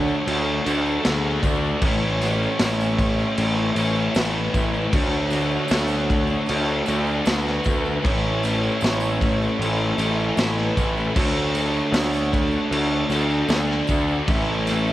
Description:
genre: rock, shoegaze and dream pop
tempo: 77 BPM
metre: 4/4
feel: straight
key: A major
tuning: A4 = 440 Hz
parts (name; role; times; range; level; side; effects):
- breathy flute-like synth lead; melody; 0.0-14.9 s; G#4 to E5; -31 LUFS; right 1 dB; chorus, cassette tape, analog delay
- chorused pulse-width pad; sustained chords; 0.0-14.9 s; A3 to C#6; -33 LUFS; equal; none
- distorted electric guitar; riff; 0.0-14.9 s; A2 to A4; -29 LUFS; equal; overdrive, cassette tape
- raw garage guitar; riff; 0.0-14.9 s; A2 to F#4; -32 LUFS; right 7 dB; none
- thick fuzz guitar; riff; 0.0-14.9 s; A2 to D4; -29 LUFS; left 6 dB; distortion, wide subtle chorus, cassette tape
- fuzz picked electric bass; bass; 0.0-14.9 s; A1 to D2; -24 LUFS; equal; overdrive
- tambourine; percussion; 0.1-14.9 s; none; -44 LUFS; right 13 dB; none
- raw garage drum kit; drums; 0.3-14.8 s; crash cymbal, kick drum, snare drum; -24 LUFS; equal; none
room: studio reverb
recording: home recording on cassette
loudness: -19 LUFS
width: side -14 dB against mid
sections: 0.0-14.9 A section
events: none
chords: 0.0 Dmaj7; 1.8 Amaj7; 4.9 Dmaj7; 8.0 Amaj7; 11.2 Dmaj7; 14.3 Amaj7

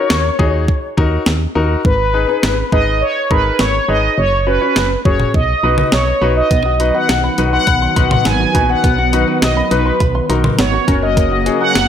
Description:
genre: synth-pop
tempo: 103 BPM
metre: 4/4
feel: straight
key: unclear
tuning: A4 = 442 Hz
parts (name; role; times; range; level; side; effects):
- analog synth brass; melody; 0.0-11.9 s; B4 to G#5; -16 LUFS; equal; chorus, slapback echo
- clear grand piano; accompaniment; 0.0-11.7 s; C#4 to C#5; -20 LUFS; left 4 dB; none
- solid FM bass; bass; 0.1-11.9 s; F#1 to D#2; -18 LUFS; equal; none
- clean 12-bit digital drum machine; drums; 0.1-11.9 s; hi-hat, kick drum, snare drum, toms; -16 LUFS; equal; none
- lush unison pad; sustained chords; 6.5-11.9 s; C#3 to B3; -21 LUFS; right 1 dB; chorus
- open-back banjo; arpeggios; 6.5-11.9 s; A#3 to B#5; -24 LUFS; right 3 dB; slapback echo
room: light reverb, digital ambience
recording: none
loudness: -12 LUFS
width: side -9 dB against mid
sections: 0.0-6.5 A section; 6.5-11.9 B section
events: none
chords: 0.0 D#m7; 1.8 G#m; 4.2 F#sus4; 5.3 B; 10.9 F#

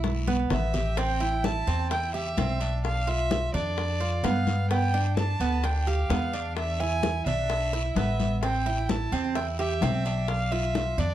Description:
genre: latin, Cuban son and guajira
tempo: 129 BPM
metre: 4/4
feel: straight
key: A minor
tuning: A4 = 440 Hz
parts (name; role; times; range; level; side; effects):
- Cuban tres; arpeggios; 0.0-11.1 s; B3 to G4; -31 LUFS; right 5 dB; slapback echo
- upright bass; bass; 0.0-11.1 s; A1 to G2; -28 LUFS; equal; none
- bongos; percussion; 0.0-11.0 s; none; -35 LUFS; left 6 dB; none
- congas; percussion; 0.0-11.1 s; none; -32 LUFS; left 3 dB; none
- guiro; percussion; 0.0-11.1 s; none; -44 LUFS; left 5 dB; none
- rich violin; melody; 0.5-11.1 s; D5 to A5; -30 LUFS; right 1 dB; none
room: light reverb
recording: dark, warm production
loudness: -24 LUFS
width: side -12 dB against mid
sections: 1.0-11.1 A section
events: drum fill 0.0-1.0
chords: 0.0 E5; 1.0 Am7; 2.8 Bdim; 4.7 G; 6.6 E7; 8.4 Am7; 10.3 Bdim

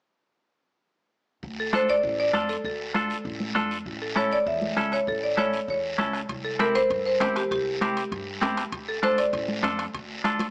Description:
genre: latin, cumbia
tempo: 197 BPM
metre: 4/4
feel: straight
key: D minor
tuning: A4 = 440 Hz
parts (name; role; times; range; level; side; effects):
- upright bass; bass; 1.4-10.4 s; A1 to G2; -42 LUFS; equal; none
- bombo; percussion; 1.4-10.4 s; none; -38 LUFS; equal; none
- guiro; percussion; 1.4-10.5 s; none; -41 LUFS; equal; none
- marimba with medium hard mallets; melody; 1.6-10.5 s; G4 to E5; -28 LUFS; equal; none
- clean electric guitar; accompaniment; 1.7-10.5 s; C4 to A4; -31 LUFS; equal; none
- congas; percussion; 1.7-10.5 s; none; -35 LUFS; equal; none
- timbales; percussion; 6.3-10.5 s; none; -38 LUFS; equal; none
room: light reverb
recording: small speaker sound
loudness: -26 LUFS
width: mono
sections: 1.4-10.5 A section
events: none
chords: 1.4 Dm; 3.9 A; 6.3 C; 8.7 Dm

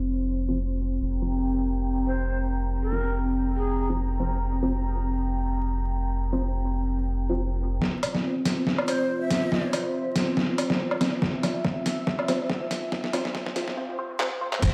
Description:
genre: deep dubstep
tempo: 141 BPM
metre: 4/4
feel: swing 55% on 16ths, half-time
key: unclear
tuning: A4 = 440 Hz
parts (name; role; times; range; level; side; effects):
- dark analog pad; sustained chords; 0.0-14.7 s; C4 to Bb5; -32 LUFS; equal; chorus
- filtered dub chord stab; stabs; 0.0-14.5 s; C4 to C5; -34 LUFS; equal; phaser, subtle chorus, dub echo
- soft dub sub bass; bass; 0.0-14.7 s; F1 to C2; -30 LUFS; equal; high-pass filter
- breathy bright low ney; melody; 2.1-3.9, 8.9-9.8 s; Ab4 to E5; -36 LUFS; equal; dub echo
- trip hop sampler-style drum kit; drums; 7.8-14.7 s; crash cymbal, handclaps, hi-hat, snare drum, woodblock; -29 LUFS; equal; overdrive, studio reverb
- electronic kick drum; drums; 11.2-14.7 s; none; -32 LUFS; equal; overdrive, studio reverb
- congas; percussion; 14.6-14.7 s; none; -30 LUFS; equal; none
room: moderate digital room reverb, RT60 1.2 s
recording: played on a big sound system in a bare room, stone room reverb, vinyl crackle, high-pass filter, low-pass filter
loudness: -27 LUFS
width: mono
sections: 0.0-7.8 A section; 7.8-14.6 B section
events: filter sweep on synth stab 0.0-7.8, 7.8-14.6; filter sweep 0.0-7.8, 7.8-14.6; build-up 7.8-14.6; drum fill 7.8-13.8, 14.2-14.6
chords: 0.0 F5

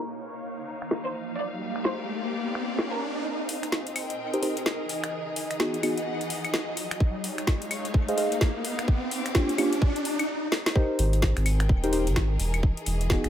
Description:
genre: UK garage, two-step garage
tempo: 128 BPM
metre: 4/4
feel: swing 61% on 16ths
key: Ab major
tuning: A4 = 440 Hz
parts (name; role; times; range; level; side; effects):
- clear studio violin section; melody; 0.0-3.1 s; Bb4 to D5; -37 LUFS; right 1 dB; dub echo
- soft string machine; sustained chords; 0.0-13.3 s; Bb3 to Eb5; -37 LUFS; equal; phaser, ensemble chorus, vintage 12-bit sampler grit, sidechain pumping
- riser; sound effects; 0.8-10.3 s; none; -34 LUFS; equal; none
- clear studio string section; texture; 0.0-13.3 s; E3 to D6; -37 LUFS; left 1 dB; sidechain pumping
- garage drum kit; drums; 0.2-13.3 s; claves, finger snaps, hi-hat, snare drum; -30 LUFS; left 1 dB; low-pass filter on cymbals, low-pass filter on hats, low-pass filter on snare, low-pass filter on perc
- deep mellow chord stab; stabs; 4.3-13.3 s; Bb3 to F5; -29 LUFS; equal; chorus, analog delay
- electronic kick drum; drums; 7.0-13.2 s; none; -23 LUFS; equal; none
- soft dub sub bass; bass; 11.0-13.3 s; Eb1 to Ab1; -25 LUFS; equal; none
room: moderate plate reverb, RT60 2.4 s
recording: echo-heavy mix, low-pass filter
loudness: -25 LUFS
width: side -10 dB against mid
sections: 0.0-3.3 A section; 3.3-10.8 B section; 10.8-13.3 C section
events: filter sweep 0.0-3.3; riser 0.8-3.3, 3.3-10.3; build-up 3.3-10.8; filter sweep on synth stab 3.3-10.8; break 10.3-10.8; drum fill 10.5; drop 10.8-13.3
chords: 0.0 Dbadd9; 3.3 Abmaj9; 4.9 Emaj9; 7.0 Dbmaj9; 8.6 Ebmaj9; 10.8 Abmaj9; 12.4 Emaj9

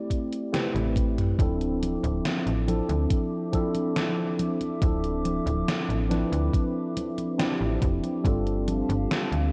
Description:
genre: vaporwave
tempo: 70 BPM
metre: 4/4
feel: straight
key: D dorian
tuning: A4 = 440 Hz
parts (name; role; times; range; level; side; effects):
- mellow tine electric piano; accompaniment; 0.0-9.5 s; F3 to D5; -30 LUFS; equal; analog chorus, analog delay
- electronic kick drum; drums; 0.1-8.4 s; none; -28 LUFS; equal; vintage 12-bit sampler grit, small room ambience
- gated 80s digital drum machine; drums; 0.1-9.5 s; congas, hi-hat, snare drum, toms; -34 LUFS; equal; gated reverb, gated reverb snare, vintage 12-bit sampler grit, small room ambience
- slap-like FM bass; bass; 0.7-9.5 s; D1 to D2; -30 LUFS; equal; none
- warbly tape-like pad; sustained chords; 1.9-9.5 s; F3 to D6; -40 LUFS; equal; chorus, built-in reverb
room: light reverb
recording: cassette tape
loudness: -26 LUFS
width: mono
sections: 0.0-1.4 A section; 1.4-9.5 B section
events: drum fill 0.5-1.4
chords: 0.0 Am7; 1.4 Dm9; 8.2 G9sus4

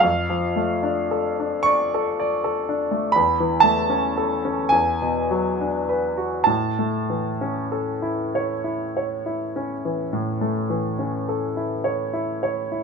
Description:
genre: classical, romantic nocturne for solo piano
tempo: 32-42 BPM (dotted quarters)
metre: 12/8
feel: rubato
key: unclear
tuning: A4 = 440 Hz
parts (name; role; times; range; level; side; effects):
- clear grand piano; solo; 0.0-12.8 s; E2 to C#6; -20 LUFS; equal; none
room: light reverb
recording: minimal, uncompressed stereo recording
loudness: -20 LUFS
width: side -5 dB against mid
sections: 0.0-12.8 A section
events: none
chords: 0.0 Dm/F; 3.2 A/E; 4.7 E9; 6.5 A

